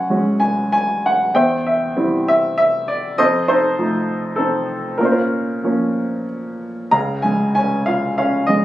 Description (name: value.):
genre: classical, lyrical solo piano.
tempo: 91-102 BPM.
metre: 3/4.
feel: rubato.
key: unclear.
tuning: A4 = 440 Hz.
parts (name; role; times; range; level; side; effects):
clear baby grand piano; solo; 0.0-8.6 s; Db2 to Bb5; -16 LUFS; equal; none.
room: light reverb.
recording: recorded on a phone in the room, studio ambience, compression.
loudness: -16 LUFS.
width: side -14 dB against mid.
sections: 0.0-6.9 A section; 6.9-8.6 B section.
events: none.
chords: 0.0 Gbsus2; 1.4 C/E; 3.2 F7; 5.0 Bbm; 6.9 Db.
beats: 0.10 0.74 | 1.36 1.96 2.58 | 3.19 3.79 4.38 | 4.99 5.62 6.27 | 6.92 7.55 8.17.